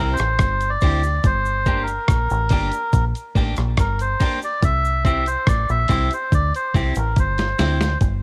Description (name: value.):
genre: roots reggae.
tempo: 71 BPM.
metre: 4/4.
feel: straight.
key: unclear.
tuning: A4 = 440 Hz.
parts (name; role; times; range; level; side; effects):
melodica; melody; 0.0-8.0 s; Bb4 to E5; -25 LUFS; equal; cassette tape.
electric guitar at the edge of break-up; accompaniment; 0.0-7.8 s; Bb3 to G4; -30 LUFS; equal; cassette tape.
deep dub fingered electric bass; bass; 0.0-8.2 s; G1 to D2; -24 LUFS; equal; tube saturation.
dusty soul sampler-style drum kit; drums; 0.2-8.2 s; hi-hat, kick drum, rim click, snare drum; -22 LUFS; equal; cassette tape.
cabasa; percussion; 0.2-8.2 s; none; -46 LUFS; equal; none.
room: digital ambience.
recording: home recording on cassette.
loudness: -20 LUFS.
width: mono.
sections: 0.0-8.0 A section.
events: melodica solo 0.0-8.0; drum fill 7.2-8.0.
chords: 0.0 C; 1.2 Gm; 4.6 C.